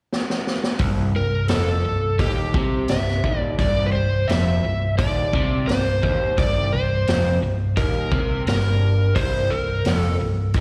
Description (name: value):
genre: blues rock power trio and southern rock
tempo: 86 BPM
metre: 4/4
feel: straight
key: unclear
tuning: A4 = 440 Hz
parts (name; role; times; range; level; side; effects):
- vintage drum kit; drums; 0.1-10.6 s; hi-hat, kick drum, snare drum; -27 LUFS; equal; none
- crunchy overdriven guitar; riff; 0.8-10.6 s; C2 to C3; -29 LUFS; equal; spring reverb, slapback echo
- picked electric bass; bass; 0.8-10.6 s; C1 to C2; -25 LUFS; equal; none
- overdriven slide guitar; melody; 1.2-10.2 s; G4 to E5; -27 LUFS; equal; slapback echo
room: light reverb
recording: live gig heard through the venue's PA, recital hall reverb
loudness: -21 LUFS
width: mono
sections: 0.8-10.6 A section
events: drum fill 0.1-0.8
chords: 0.0 N.C.; 0.8 C7(no3)